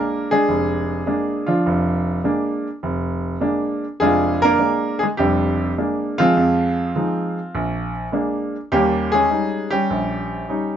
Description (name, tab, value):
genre	solo jazz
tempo	102 BPM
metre	4/4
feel	swing 69% on 8ths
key	Bb mixolydian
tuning	A4 = 440 Hz
part	clear baby grand piano	solo	0.0-10.8 s	F1 to Bb4	-18 LUFS	equal	none
room	moderate studio reverb, RT60 0.6 s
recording	nothing above 7.5 kHz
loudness	-18 LUFS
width	side -9 dB against mid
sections	0.0-10.8 A section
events	none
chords	0.0 Bb7; 6.4 Fm7; 7.5 Bb7; 8.7 Eb7